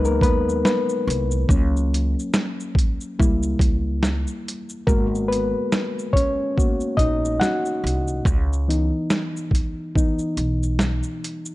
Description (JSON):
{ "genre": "lo-fi hip hop", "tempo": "71 BPM", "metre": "4/4", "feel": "swing 60% on 16ths", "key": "C# dorian", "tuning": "A4 = 440 Hz", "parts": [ { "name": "reed electric piano", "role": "accompaniment", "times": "0.0-11.5 s", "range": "E3 to F#5", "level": "-23 LUFS", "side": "left 1 dB", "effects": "low-pass filter" }, { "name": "upright bass", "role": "bass", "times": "0.0-11.0 s", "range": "G#1 to D#2", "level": "-23 LUFS", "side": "equal", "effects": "none" }, { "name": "boom bap sampler-style drum kit", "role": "drums", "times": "0.0-11.5 s", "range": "hi-hat, kick drum, shaker, snare drum", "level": "-21 LUFS", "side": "equal", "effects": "vintage 12-bit sampler grit" } ], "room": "digital ambience", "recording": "dark, warm production", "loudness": "-19 LUFS", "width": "side -18 dB against mid", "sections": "0.0-4.9 A section; 4.9-11.5 B section", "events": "reed electric piano solo 0.0-4.9, 4.9-11.5", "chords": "0.0 Bmaj13; 1.5 F#/C#; 3.2 C#dim7; 4.9 G#m9; 8.3 C#m7", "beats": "0.65 | 1.49 2.34 3.18 4.03 | 4.87 5.72 6.56 7.41 | 8.25 9.10 9.94 10.79" }